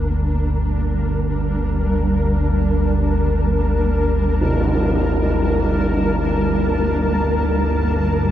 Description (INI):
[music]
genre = dark ambient drone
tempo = free time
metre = none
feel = none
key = G minor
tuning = A4 = 440 Hz
[part]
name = granular cloud pad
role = sustained chords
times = 0.0-8.3 s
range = G3 to A5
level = -22 LUFS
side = right 1 dB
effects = built-in reverb
[part]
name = analog drone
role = drone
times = 0.0-8.3 s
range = G1 to D2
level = -19 LUFS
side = equal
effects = lush chorus
[part]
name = flickering grainy texture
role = texture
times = 0.0-8.3 s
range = Bb3 to Bb4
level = -26 LUFS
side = left 2 dB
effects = built-in reverb
[part]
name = tam-tam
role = percussion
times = 4.4-4.7 s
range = none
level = -23 LUFS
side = right 1 dB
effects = low-pass filter on cymbals
[sound]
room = wet huge ambient reverb, RT60 8.2 s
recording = cassette tape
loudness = -16 LUFS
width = side -11 dB against mid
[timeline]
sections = 0.0-8.3 A section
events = none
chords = 0.0 Gm